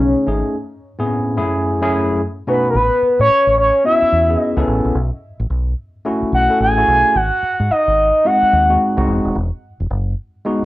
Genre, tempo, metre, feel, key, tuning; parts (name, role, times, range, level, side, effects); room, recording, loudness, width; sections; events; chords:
R&B, new jack swing; 109 BPM; 4/4; swing 62% on 16ths; A4 = 441 Hz
expressive synth lead; melody; 0.0-9.1 s; C#4 to G#5; -14 LUFS; equal; chorus
bright tine electric piano; accompaniment; 0.0-10.7 s; F#2 to A4; -19 LUFS; equal; medium stereo tremolo, cassette tape
deep dub fingered electric bass; bass; 0.0-10.7 s; D#1 to A2; -19 LUFS; equal
wet small room reverb, RT60 0.5 s; home recording on cassette; -14 LUFS; side -17 dB against mid
0.0-2.7 A section; 2.7-10.7 B section
break 0.5-2.7
0.0 B13; 0.5 Amaj7; 1.4 F#m7; 2.2 B7; 2.7 A69; 4.9 B7sus4; 7.1 G#7; 9.4 Emaj7